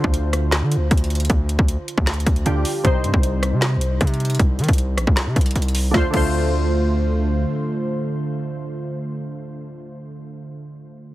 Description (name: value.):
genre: hip hop, trap.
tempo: 155 BPM.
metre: 4/4.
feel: half-time.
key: D phrygian.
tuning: A4 = 440 Hz.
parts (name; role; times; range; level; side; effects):
glassy digital keys; accompaniment; 0.0-11.1 s; C3 to C5; -24 LUFS; equal; chorus.
hard-hitting 808-style bass; bass; 0.0-7.5 s; Bb1 to Eb3; -20 LUFS; equal; none.
trap drum kit; drums; 0.0-6.2 s; crash cymbal, handclaps, hi-hat, kick drum, rim click, snare drum; -20 LUFS; equal; none.
room: little or no reverb.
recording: heavily compressed radio sound, multiband compression.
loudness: -18 LUFS.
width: side -16 dB against mid.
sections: 0.0-5.9 A section; 5.9-9.0 B section.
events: none.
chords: 0.0 Dm7; 2.8 Cm; 5.9 Dm7.